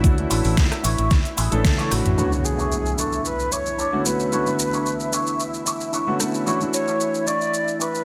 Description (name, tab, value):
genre	nu-disco, nu disco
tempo	112 BPM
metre	4/4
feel	straight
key	B minor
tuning	A4 = 440 Hz
part	warm concert grand piano	accompaniment	0.0-8.0 s	D3 to C#5	-28 LUFS	equal	vintage 12-bit sampler grit, sidechain pumping
part	lush unison pad	sustained chords	0.0-8.0 s	E4 to E5	-34 LUFS	equal	chorus, phaser, sidechain pumping
part	fingered electric bass	bass	0.0-2.2 s	A1 to D2	-25 LUFS	equal	none
part	electronic kick drum	drums	0.0-1.8 s	none	-21 LUFS	equal	overdrive
part	pop drum kit	drums	0.0-8.0 s	hi-hat, rim click, shaker, snare drum, toms	-29 LUFS	equal	overdrive
part	cabasa	percussion	0.0-2.2 s	none	-34 LUFS	equal	none
part	electric guitar with an envelope filter	riff	0.3-8.0 s	D4 to D5	-30 LUFS	equal	lush chorus, low-pass filter
part	breathy mellow concert flute	melody	1.6-8.0 s	F#4 to D5	-28 LUFS	equal	delay
part	impact	sound effects	2.2-4.3 s	none	-32 LUFS	equal	none
room	light reverb, digital ambience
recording	none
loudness	-22 LUFS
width	mono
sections	0.0-2.2 A section; 2.2-8.0 B section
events	drum fill 1.6-2.2; band accent 1.6; impact 2.2-4.3; filter sweep on clean electric guitar 2.2-8.0; filter sweep on analog synth pad 2.2-8.0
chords	0.0 Dmaj9; 2.2 Bm9; 6.5 Dmaj9